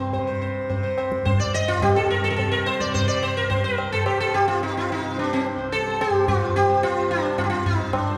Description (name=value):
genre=indian classical, Hindustani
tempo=108 BPM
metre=4/4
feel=straight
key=C raga kafi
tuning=A4 = 439 Hz
part: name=sitar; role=melody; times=0.0-8.2 s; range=C4 to Eb5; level=-24 LUFS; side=equal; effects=none
part: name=tanpura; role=drone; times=0.0-8.2 s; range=C2 to C3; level=-32 LUFS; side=equal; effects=none
part: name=tabla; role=percussion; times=0.1-8.1 s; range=none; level=-29 LUFS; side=equal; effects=none
room=wet scoring stage reverb, RT60 2.0 s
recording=heard from further back in the room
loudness=-22 LUFS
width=mono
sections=0.0-8.2 A section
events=speeding up 0.0-8.2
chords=none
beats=0.13 0.70 1.26 | 1.83 2.39 2.95 3.51 | 4.07 4.62 5.17 5.73 | 6.28 6.83 7.38 7.93